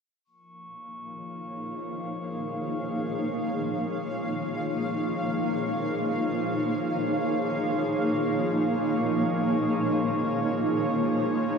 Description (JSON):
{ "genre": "ambient", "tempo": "free time", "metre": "none", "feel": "none", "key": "Bb minor", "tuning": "A4 = 438 Hz", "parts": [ { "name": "glass harmonica", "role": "texture", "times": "0.2-11.6 s", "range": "Db6", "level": "-38 LUFS", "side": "equal", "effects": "shimmer reverb" }, { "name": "granular cloud pad", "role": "sustained chords", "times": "1.1-11.6 s", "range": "Bb3 to F5", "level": "-26 LUFS", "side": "equal", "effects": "built-in reverb, shimmer reverb" }, { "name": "organ-like drone", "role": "drone", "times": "1.1-11.6 s", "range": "F3 to Bb3", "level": "-33 LUFS", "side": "left 1 dB", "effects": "ensemble chorus, built-in reverb" } ], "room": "wet cathedral reverb, RT60 4.9 s", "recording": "cassette tape, nothing above 10.3 kHz", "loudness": "-25 LUFS", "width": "side -5 dB against mid", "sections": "0.3-11.6 A section", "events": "fade-in on glass harmonica 0.3-11.6", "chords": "0.3 Bbm7" }